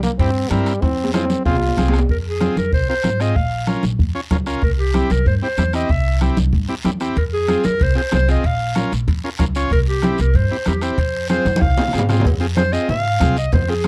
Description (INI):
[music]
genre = latin, cumbia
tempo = 189 BPM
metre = 4/4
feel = straight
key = F harmonic minor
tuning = A4 = 441 Hz
[part]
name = growling trombone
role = second line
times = 0.0-1.9 s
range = G3 to F4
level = -24 LUFS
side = equal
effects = none
[part]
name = upright bass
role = bass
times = 0.0-13.9 s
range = Bb1 to Ab2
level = -22 LUFS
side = equal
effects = none
[part]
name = congas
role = percussion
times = 0.0-13.9 s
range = none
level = -25 LUFS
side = equal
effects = none
[part]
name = guiro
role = percussion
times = 0.0-13.9 s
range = none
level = -37 LUFS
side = equal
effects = none
[part]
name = timbales and cowbell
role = percussion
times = 0.0-2.1, 7.2-13.9 s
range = none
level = -30 LUFS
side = equal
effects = none
[part]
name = overdriven combo organ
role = accompaniment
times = 0.2-13.9 s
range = C4 to Db5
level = -26 LUFS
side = equal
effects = none
[part]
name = bombo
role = percussion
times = 0.2-13.9 s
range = none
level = -23 LUFS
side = equal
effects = none
[part]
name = clear clarinet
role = melody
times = 2.1-13.9 s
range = G4 to F5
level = -24 LUFS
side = equal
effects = slapback echo
[sound]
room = little or no reverb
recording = dry, close 1970s-style studio recording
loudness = -18 LUFS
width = mono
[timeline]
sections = 0.0-2.1 A section; 2.1-12.3 B section; 12.3-13.9 C section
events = trombone solo 0.0-2.1; drum fill 0.8-2.1, 11.5-12.3; clarinet solo 12.3-13.9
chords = 0.0 C7; 0.8 Fm; 3.4 Bbm; 4.6 C; 7.2 Fm; 8.4 Bbm; 9.7 C; 11.0 Fm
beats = 0.19 0.50 | 0.82 1.14 1.46 1.77 | 2.09 2.41 2.72 3.04 | 3.36 3.68 3.99 4.31 | 4.63 4.95 5.26 5.58 | 5.90 6.22 6.53 6.85 | 7.17 7.49 7.81 8.12 | 8.44 8.76 9.08 9.40 | 9.71 10.03 10.35 10.67 | 10.99 11.30 11.62 11.94 | 12.26 12.57 12.89 13.21 | 13.53 13.84